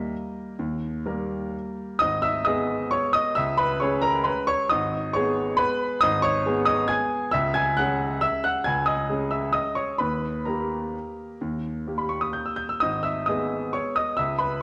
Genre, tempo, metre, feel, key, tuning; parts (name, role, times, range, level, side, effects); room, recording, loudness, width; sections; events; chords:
classical, piano waltz; 120-142 BPM; 3/4; rubato; G# minor; A4 = 440 Hz
clear baby grand piano; solo; 0.0-14.6 s; G#1 to G#6; -25 LUFS; equal
wet recital hall reverb, RT60 1.5 s; worn, warbling old tape, cassette tape, warbly pitch drift; -25 LUFS; mono
0.0-2.0 A section; 2.0-14.6 B section
0.0 D#; 2.0 G#m; 3.4 C#m; 4.7 G#m; 7.3 C#m; 10.0 D#; 12.8 G#m